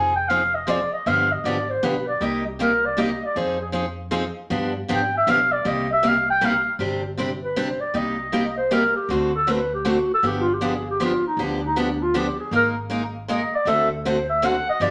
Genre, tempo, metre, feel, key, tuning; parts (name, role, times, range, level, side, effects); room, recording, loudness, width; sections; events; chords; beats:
acoustic string swing (jazz manouche); 157 BPM; 3/4; swing 62% on 8ths; A4 = 441 Hz
breathy clarinet; melody; 0.0-14.9 s; D4 to Ab5; -24 LUFS; equal
picked steel-string acoustic guitar; accompaniment; 0.0-14.9 s; C3 to Bb4; -27 LUFS; equal
upright bass; bass; 0.0-14.9 s; F1 to G2; -35 LUFS; equal
wet studio reverb, RT60 0.8 s; -22 LUFS; mono
0.0-6.8 A section; 6.8-14.9 A section
clarinet solo 0.0-6.8, 6.8-14.9
0.0 Fm7; 1.1 G7; 2.2 Cm7; 3.4 Fm7; 4.5 G7; 5.7 Cm7; 6.8 Gsus4; 7.9 Cm7; 9.1 D7; 10.2 G7; 12.5 Absus2; 13.7 D7
0.29 0.68 | 1.06 1.44 1.82 | 2.21 2.59 2.97 | 3.36 3.74 4.12 | 4.50 4.89 5.27 | 5.65 6.03 6.42 | 6.80 7.18 7.56 | 7.94 8.33 8.71 | 9.09 9.47 9.85 | 10.24 10.62 11.00 | 11.38 11.76 12.14 | 12.53 12.91 13.29 | 13.67 14.05 14.43 | 14.82